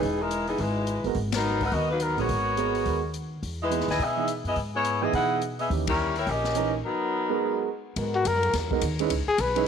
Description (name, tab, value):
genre	jazz, big band swing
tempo	212 BPM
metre	4/4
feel	swing 62% on 8ths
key	G# minor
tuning	A4 = 440 Hz
part	warm saxophone section	melody	0.0-7.7 s	E3 to G#5	-26 LUFS	left 2 dB	none
part	warm concert grand piano	accompaniment	0.0-9.7 s	E3 to B4	-29 LUFS	right 11 dB	none
part	upright bass	bass	0.0-9.7 s	E1 to B2	-30 LUFS	equal	none
part	swinging big-band drum kit	drums	0.0-9.6 s	hi-hat, kick drum, ride cymbal, snare drum	-36 LUFS	left 4 dB	none
part	clear trombone section	sustained chords	8.0-8.8 s	G#3 to A#4	-34 LUFS	equal	none
part	mellow trumpet	melody	8.1-9.7 s	F#4 to B4	-25 LUFS	left 3 dB	tape echo
room	light reverb, small room ambience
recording	1960s-style stereo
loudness	-24 LUFS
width	side -7 dB against mid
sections	0.0-8.0 A section; 8.0-9.7 B section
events	band accent 1.3, 5.8; break 6.8-8.0; trumpet solo 8.0-9.7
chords	0.0 C#m9 (rootless); 1.2 G#m9; 3.4 Emaj7; 5.7 D#7b9; 6.8 G#m9; 9.1 C#m9